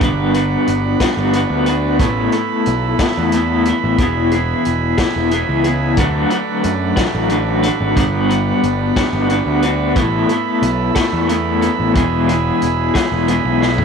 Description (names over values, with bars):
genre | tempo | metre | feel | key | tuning
psychedelic rock | 60 BPM (dotted quarters) | 6/8 | straight | E mixolydian | A4 = 440 Hz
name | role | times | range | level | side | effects
overdriven combo organ | sustained chords | 0.0-13.8 s | G3 to B5 | -22 LUFS | right 11 dB | spring reverb
electric guitar through a small old amp | riff | 0.0-13.8 s | D3 to B4 | -16 LUFS | left 2 dB | tremolo
fuzz picked electric bass | bass | 0.0-13.8 s | E1 to F#2 | -20 LUFS | equal | overdrive
vintage drum kit | drums | 0.0-13.8 s | hi-hat, kick drum, snare drum, toms | -21 LUFS | left 2 dB | none
room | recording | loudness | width
light reverb | 1960s-style stereo | -14 LUFS | side -6 dB against mid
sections
0.0-13.8 A section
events
drum fill 13.6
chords
0.0 Gmaj7; 2.0 Asus2; 4.0 E; 6.0 D6; 8.0 Gmaj7; 10.0 Asus2; 12.0 E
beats
| 0.01 1.01 | 2.00 2.99 | 3.99 4.98 | 5.98 6.97 | 7.97 8.97 | 9.96 10.96 | 11.96 12.96